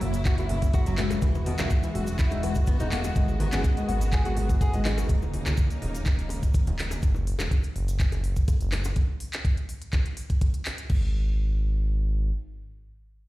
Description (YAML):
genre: afro house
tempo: 124 BPM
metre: 4/4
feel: straight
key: unclear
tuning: A4 = 441 Hz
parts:
  - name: rich studio string section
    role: sustained chords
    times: 0.0-7.0 s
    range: C#3 to F#4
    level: -36 LUFS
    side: equal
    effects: sidechain pumping
  - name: deep mellow chord stab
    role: stabs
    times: 0.0-5.3 s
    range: G#3 to F#5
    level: -34 LUFS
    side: left 3 dB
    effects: chorus, phaser, sidechain pumping, tape echo
  - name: smooth synth bass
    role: bass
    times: 0.0-12.3 s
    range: D#1 to C#2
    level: -27 LUFS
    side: equal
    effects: sidechain pumping
  - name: afro-pop drum kit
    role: drums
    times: 0.0-11.0 s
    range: crash cymbal, handclaps, hi-hat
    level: -36 LUFS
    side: equal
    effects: small room ambience
  - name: congas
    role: percussion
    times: 0.0-7.0 s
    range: none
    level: -36 LUFS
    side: right 3 dB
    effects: none
  - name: cabasa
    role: percussion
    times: 0.1-8.9 s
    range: none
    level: -47 LUFS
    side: right 2 dB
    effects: none
  - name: nylon-string guitar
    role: arpeggios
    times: 0.3-4.8 s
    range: B2 to G#4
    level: -34 LUFS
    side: left 1 dB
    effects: sidechain pumping, tape echo
  - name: electronic kick drum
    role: drums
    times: 0.3-11.0 s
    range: none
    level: -23 LUFS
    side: equal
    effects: small room ambience
  - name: bongos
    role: percussion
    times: 0.4-8.9 s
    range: none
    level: -40 LUFS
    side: left 5 dB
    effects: none
room: studio reverb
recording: played on a big sound system in a bare room, large studio reverb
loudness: -23 LUFS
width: side -17 dB against mid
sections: 0.0-10.9 A section; 10.9-13.3 B section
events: drop 0.0-10.9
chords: 0.0 F#7; 1.2 Eadd9; 3.2 G#m7; 5.1 D#7sus4; 7.0 N.C.